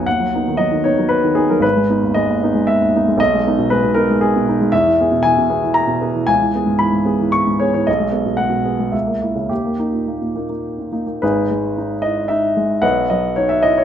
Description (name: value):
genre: classical, romantic character piece for solo piano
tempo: 103-118 BPM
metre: 3/4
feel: rubato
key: G# minor from 4.7 s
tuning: A4 = 438 Hz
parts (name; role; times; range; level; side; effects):
- warm grand piano; solo; 0.0-13.8 s; G#1 to C#6; -14 LUFS; equal; none
room: moderate recital hall reverb, RT60 1.5 s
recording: close, detailed microphones, faint mains hum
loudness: -14 LUFS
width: side -9 dB against mid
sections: 0.0-11.2 A section; 11.2-13.8 B section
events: none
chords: 0.1 B/D#; 1.6 G#m; 3.2 G#m/B; 4.7 E; 6.3 C#m7; 7.9 G#m/B; 8.9 A#dim/C#; 9.5 D#; 11.2 G#m; 12.8 B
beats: | 0.06 0.59 1.11 | 1.63 2.15 2.67 | 3.19 3.70 4.21 | 4.72 5.24 5.76 | 6.29 6.82 7.36 | 7.88 8.39 8.93 | 9.50 10.08 10.65 | 11.22 11.77 12.30 | 12.83 13.37